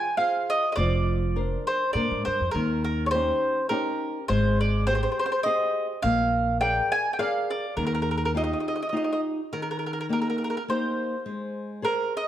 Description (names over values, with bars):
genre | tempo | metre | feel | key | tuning
italian folk, Italian serenade | 103 BPM | 3/4 | swing 54% on 8ths | Eb major | A4 = 440 Hz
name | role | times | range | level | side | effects
mandolin | melody | 0.0-12.3 s | Bb4 to Ab5 | -26 LUFS | right 1 dB | none
flamenco guitar | accompaniment | 0.0-12.3 s | Eb3 to D5 | -29 LUFS | left 1 dB | none
upright bass | bass | 0.8-8.5 s | F1 to Bb2 | -27 LUFS | equal | none
room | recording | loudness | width
moderate recital hall reverb, RT60 1.4 s | none | -23 LUFS | side -11 dB against mid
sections
0.0-9.5 A section; 9.5-12.3 A section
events
none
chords
0.0 Fm; 0.8 Bbadd9/F; 2.5 Eb7; 4.3 Abmaj7; 6.0 Bb7; 7.8 Ebadd9; 9.5 Eb; 11.2 Abadd9